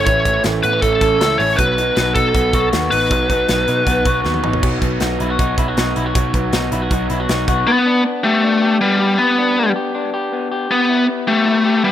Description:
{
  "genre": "jangly indie pop",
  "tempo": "158 BPM",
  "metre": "4/4",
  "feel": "straight",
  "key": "unclear",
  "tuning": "A4 = 440 Hz",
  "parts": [
    { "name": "biting lead guitar", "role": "melody", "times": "0.0-4.2, 7.7-11.9 s", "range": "G3 to C#5", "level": "-15 LUFS", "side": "left 1 dB", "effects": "overdrive, digital delay" },
    { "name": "raw garage guitar", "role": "accompaniment", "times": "0.0-7.7 s", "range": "A2 to F#4", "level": "-23 LUFS", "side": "right 8 dB", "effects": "overdrive" },
    { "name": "electric guitar through a small old amp", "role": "arpeggios", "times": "0.0-11.9 s", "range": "E3 to A4", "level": "-21 LUFS", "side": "left 3 dB", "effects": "none" },
    { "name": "vintage muted picked electric bass", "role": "bass", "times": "0.0-7.6 s", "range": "A1 to B2", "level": "-22 LUFS", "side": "right 1 dB", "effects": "none" },
    { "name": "modern studio drum kit", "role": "drums", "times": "0.1-7.6 s", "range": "crash cymbal, hi-hat, kick drum, snare drum, toms", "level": "-21 LUFS", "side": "equal", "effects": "none" }
  ],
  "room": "light reverb, studio reverb",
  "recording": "rough home demo mix",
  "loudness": "-14 LUFS",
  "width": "side -11 dB against mid",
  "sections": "0.0-4.6 A section; 4.6-7.7 B section; 7.7-11.9 C section",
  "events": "drum fill 4.2-4.6",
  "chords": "0.0 A; 1.6 B; 7.7 G; 10.7 Em"
}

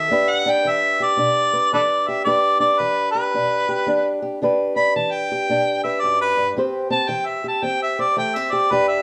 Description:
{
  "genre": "acoustic country blues, solo or duo",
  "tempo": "112 BPM",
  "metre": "4/4",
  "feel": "swing 64% on 8ths",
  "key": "E minor",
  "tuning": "A4 = 441 Hz",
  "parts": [
    { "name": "mellow harmonica", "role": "melody", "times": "0.0-9.0 s", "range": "A4 to B5", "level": "-22 LUFS", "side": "equal", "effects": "plate reverb" },
    { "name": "fingerpicked old ladder-braced acoustic guitar", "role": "accompaniment", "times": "0.0-9.0 s", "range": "E2 to C5", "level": "-24 LUFS", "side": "equal", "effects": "none" }
  ],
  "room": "wet studio reverb, RT60 0.8 s",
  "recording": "heard from further back in the room",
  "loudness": "-20 LUFS",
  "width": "mono",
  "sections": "0.0-4.4 A section; 4.4-9.0 B section",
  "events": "harmonica solo 4.4-9.0",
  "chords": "0.1 Em7; 6.6 Am7"
}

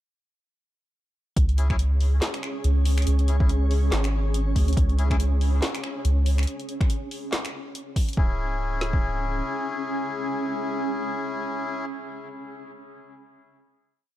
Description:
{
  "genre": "deep dubstep",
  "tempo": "141 BPM",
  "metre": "4/4",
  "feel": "swing 57% on 16ths, half-time",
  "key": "C# minor",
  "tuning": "A4 = 439 Hz",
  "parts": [
    { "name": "granular cloud pad", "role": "sustained chords", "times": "2.0-11.8 s", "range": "C#4 to G#4", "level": "-33 LUFS", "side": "right 2 dB", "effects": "built-in reverb" },
    { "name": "soft dub sub bass", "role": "bass", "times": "1.4-9.4 s", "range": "C#1 to D2", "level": "-22 LUFS", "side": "equal", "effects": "none" },
    { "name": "deep house drum kit", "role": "drums", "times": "1.4-9.0 s", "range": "kick drum, snare drum", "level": "-23 LUFS", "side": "equal", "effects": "none" },
    { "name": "deep house drum kit", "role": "drums", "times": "1.4-8.2 s", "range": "finger snaps, handclaps, hi-hat, snare drum", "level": "-31 LUFS", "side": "equal", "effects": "none" },
    { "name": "flickering grainy texture", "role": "texture", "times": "1.6-8.2 s", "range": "C#4 to C#5", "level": "-37 LUFS", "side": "equal", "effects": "built-in reverb" },
    { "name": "melodica", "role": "stabs", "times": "1.6-5.2, 8.2-11.9 s", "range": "C#4 to G#4", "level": "-33 LUFS", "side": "left 4 dB", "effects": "dub echo" }
  ],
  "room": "little or no reverb",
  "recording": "dark, warm production",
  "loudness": "-22 LUFS",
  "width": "side -14 dB against mid",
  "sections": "1.4-8.2 drop; 8.2-11.6 final chord",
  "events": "drop 1.4-8.2",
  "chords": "1.4 C#5; 8.2 C#m"
}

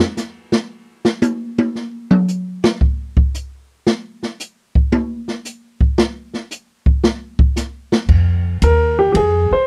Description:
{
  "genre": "jazz piano trio",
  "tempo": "114 BPM",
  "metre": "4/4",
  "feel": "swing 68% on 8ths",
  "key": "unclear",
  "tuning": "A4 = 440 Hz",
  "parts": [
    { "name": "open jazz drum kit", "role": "drums", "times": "0.2-9.3 s", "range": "crash cymbal, hi-hat, kick drum, ride cymbal, snare drum, toms", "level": "-18 LUFS", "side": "equal", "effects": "none" },
    { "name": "upright bass", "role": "bass", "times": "8.1-9.5 s", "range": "Eb2 to F2", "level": "-18 LUFS", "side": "equal", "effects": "none" },
    { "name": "clear baby grand piano", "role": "melody", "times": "8.6-9.7 s", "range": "G4 to C5", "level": "-16 LUFS", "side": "equal", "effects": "none" }
  ],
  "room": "little or no reverb",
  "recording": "dry, close 1970s-style studio recording",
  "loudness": "-17 LUFS",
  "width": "mono",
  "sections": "0.0-8.1 A section; 8.1-9.7 B section",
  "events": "drum solo 0.0-8.1",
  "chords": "0.0 N.C.; 8.1 Fm7"
}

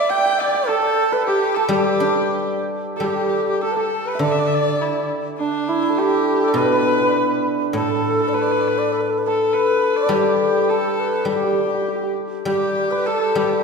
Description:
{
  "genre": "chinese traditional, Chinese chamber ensemble",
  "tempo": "102 BPM",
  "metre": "2/4",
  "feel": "straight",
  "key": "G gong mode",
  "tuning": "A4 = 440 Hz",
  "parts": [
    { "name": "breathy bright xiao", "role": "melody", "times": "0.0-13.6 s", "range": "D4 to G5", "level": "-22 LUFS", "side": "right 2 dB", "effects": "none" },
    { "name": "bright erhu", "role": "second line", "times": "0.0-13.6 s", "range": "D4 to G5", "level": "-26 LUFS", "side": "left 4 dB", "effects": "none" },
    { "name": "hammered dulcimer", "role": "second line", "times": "0.0-13.6 s", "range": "D4 to G5", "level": "-21 LUFS", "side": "right 1 dB", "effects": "none" },
    { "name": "guzheng", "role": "accompaniment", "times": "1.7-13.6 s", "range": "A2 to D4", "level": "-24 LUFS", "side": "left 2 dB", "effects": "none" }
  ],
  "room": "wet concert hall reverb, RT60 2.1 s",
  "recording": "heard from further back in the room",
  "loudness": "-17 LUFS",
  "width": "side -4 dB against mid",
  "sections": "0.0-3.0 A section; 3.0-12.5 B section; 12.5-13.6 C section",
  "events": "none",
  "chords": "none"
}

